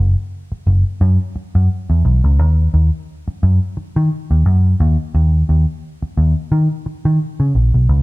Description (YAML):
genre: funk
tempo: 87 BPM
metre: 4/4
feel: swing 56% on 16ths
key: unclear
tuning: A4 = 441 Hz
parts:
  - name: vintage muted picked electric bass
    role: solo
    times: 0.0-8.0 s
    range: F#1 to D#3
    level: -13 LUFS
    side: equal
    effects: none
room: moderate echo chamber reverb, RT60 1.4 s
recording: dark, warm production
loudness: -13 LUFS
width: side -21 dB against mid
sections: 0.0-8.0 A section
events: none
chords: none